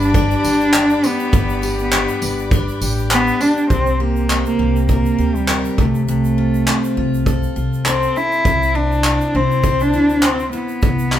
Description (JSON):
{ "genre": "acoustic pop", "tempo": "101 BPM", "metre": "4/4", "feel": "swing 55% on 16ths", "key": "C major", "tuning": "A4 = 440 Hz", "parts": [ { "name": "warm cello", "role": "melody", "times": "0.0-11.2 s", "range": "G3 to E4", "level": "-18 LUFS", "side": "equal", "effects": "none" }, { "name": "picked steel-string acoustic guitar", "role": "accompaniment", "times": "0.0-11.2 s", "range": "C3 to C5", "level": "-23 LUFS", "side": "left 2 dB", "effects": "none" }, { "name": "warm studio string section", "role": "sustained chords", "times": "0.0-3.7 s", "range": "G4 to D6", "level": "-30 LUFS", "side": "left 2 dB", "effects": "none" }, { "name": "upright bass", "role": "bass", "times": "0.0-11.2 s", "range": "G1 to D2", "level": "-21 LUFS", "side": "equal", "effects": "none" }, { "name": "egg shaker", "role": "percussion", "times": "0.0-11.2 s", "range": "none", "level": "-38 LUFS", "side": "right 6 dB", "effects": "none" }, { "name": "soft brush drum kit", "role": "drums", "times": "0.1-11.2 s", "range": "handclaps, kick drum, tambourine", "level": "-18 LUFS", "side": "equal", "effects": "none" } ], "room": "light reverb", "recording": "band playing live in one room", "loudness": "-14 LUFS", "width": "side -11 dB against mid", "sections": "0.0-3.7 A section; 3.7-11.2 B section", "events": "none", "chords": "0.0 G; 3.7 Gmadd11/C; 5.8 F/C; 8.5 C", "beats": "0.15 0.74 | 1.33 1.92 2.52 3.11 | 3.70 4.29 4.89 5.48 | 6.08 6.67 7.26 7.86 | 8.45 9.05 9.64 10.23 | 10.83" }